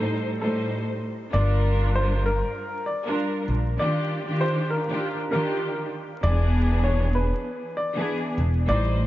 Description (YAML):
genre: hip hop, boom-bap hip-hop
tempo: 98 BPM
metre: 4/4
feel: swing 63% on 16ths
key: G minor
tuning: A4 = 440 Hz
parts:
  - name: warm upright piano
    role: melody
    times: 0.0-9.1 s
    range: A4 to D5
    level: -29 LUFS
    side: left 1 dB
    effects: high-pass filter, low-pass filter, dub echo
  - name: warm studio string section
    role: accompaniment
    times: 0.0-9.1 s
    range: A2 to C5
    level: -26 LUFS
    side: equal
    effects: cassette tape, high-pass filter, low-pass filter, dub echo
  - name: upright bass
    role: bass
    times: 1.3-9.1 s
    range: E1 to Bb1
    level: -22 LUFS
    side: equal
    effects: none
room: light reverb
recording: echo-heavy mix, vinyl crackle, nothing above 7.6 kHz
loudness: -22 LUFS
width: side -15 dB against mid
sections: 0.0-1.3 A section; 1.3-9.1 B section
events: break 0.1-1.3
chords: 0.0 Am7b5; 1.3 Gm7; 3.8 Ebmaj9; 6.2 E7